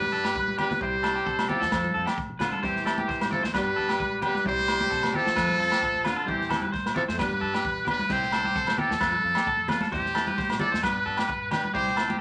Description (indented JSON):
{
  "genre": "highlife guitar band",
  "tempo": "132 BPM",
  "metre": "4/4",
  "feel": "swing 54% on 16ths",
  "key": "C major",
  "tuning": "A4 = 438 Hz",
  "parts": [
    { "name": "trumpet with metal mute", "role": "melody", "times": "0.0-12.2 s", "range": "F4 to C5", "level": "-30 LUFS", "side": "equal", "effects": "none" },
    { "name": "breathy tenor saxophone", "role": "second line", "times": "0.0-7.9 s", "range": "D3 to A3", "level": "-35 LUFS", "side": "equal", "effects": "none" },
    { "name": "clean electric guitar", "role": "accompaniment", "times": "0.0-12.1 s", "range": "F3 to A4", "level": "-40 LUFS", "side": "equal", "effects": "none" },
    { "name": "electric guitar at the edge of break-up", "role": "arpeggios", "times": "0.0-12.2 s", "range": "G4 to D5", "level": "-34 LUFS", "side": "equal", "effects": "none" },
    { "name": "upright bass", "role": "bass", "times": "0.0-12.1 s", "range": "B1 to C3", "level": "-40 LUFS", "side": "equal", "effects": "none" },
    { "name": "congas", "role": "percussion", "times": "0.0-12.2 s", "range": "none", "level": "-37 LUFS", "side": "equal", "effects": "none" },
    { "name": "vintage drum kit", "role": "drums", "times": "0.2-12.1 s", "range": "crash cymbal, kick drum, snare drum", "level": "-37 LUFS", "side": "equal", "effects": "none" },
    { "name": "agogo bells", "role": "percussion", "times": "0.2-12.1 s", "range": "none", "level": "-35 LUFS", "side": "equal", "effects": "none" }
  ],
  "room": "wet studio reverb, RT60 0.6 s",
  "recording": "none",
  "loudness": "-26 LUFS",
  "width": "mono",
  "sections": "0.0-8.1 A section; 8.1-12.2 A section",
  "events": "drum fill 0.4-0.8",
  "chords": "0.0 G; 0.8 C; 1.7 F; 2.6 C/E; 3.5 G; 4.5 C; 5.4 F; 6.3 C/E; 7.2 G; 8.1 C; 9.0 F; 9.9 C/E; 10.8 G",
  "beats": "0.35 | 0.81 1.26 1.72 2.18 | 2.63 3.09 3.54 4.00 | 4.46 4.91 5.37 5.82 | 6.28 6.73 7.19 7.64 | 8.10 8.56 9.01 9.47 | 9.92 10.38 10.84 11.29 | 11.75 12.20"
}